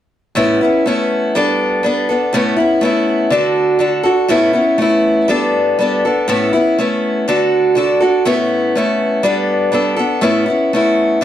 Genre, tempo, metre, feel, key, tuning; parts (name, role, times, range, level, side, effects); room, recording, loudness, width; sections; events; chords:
rock; 122 BPM; 4/4; straight; A mixolydian; A4 = 439 Hz
picked steel-string acoustic guitar; solo; 0.4-11.2 s; A2 to A4; -12 LUFS; equal; slapback echo
moderate studio ambience, RT60 0.5 s; dark, warm production; -12 LUFS; side -11 dB against mid
0.4-11.2 A section
0.4 Aadd9; 1.3 Gadd9; 2.3 Aadd9; 3.3 D; 4.3 Aadd9; 5.3 Gadd9; 6.3 Aadd9; 7.3 D; 8.2 Aadd9; 9.2 Gadd9; 10.2 Aadd9